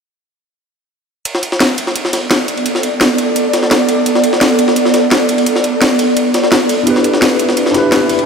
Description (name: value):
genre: liquid drum and bass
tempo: 171 BPM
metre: 4/4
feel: straight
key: unclear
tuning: A4 = 442 Hz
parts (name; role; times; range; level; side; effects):
- ethereal airy pad; sustained chords; 2.1-8.3 s; B3 to E5; -14 LUFS; right 1 dB; ensemble chorus, built-in reverb
- garage drum kit; drums; 1.3-8.2 s; hi-hat, snare drum; -16 LUFS; left 1 dB; studio reverb
- jungle sampler-style drum kit; drums; 1.3-8.3 s; ride cymbal, snare drum; -17 LUFS; equal; overdrive, high-pass filter on cymbals, studio reverb, high-pass filter on snare
- bright tine electric piano; accompaniment; 6.8-8.3 s; D4 to B4; -13 LUFS; left 1 dB; fast stereo tremolo, ping-pong delay
room: wet huge ambient reverb, RT60 6.5 s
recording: dreamy mix soaked in reverb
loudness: -10 LUFS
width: side -5 dB against mid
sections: 1.3-8.3 A section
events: none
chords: 1.3 Bm7; 6.9 Cmaj7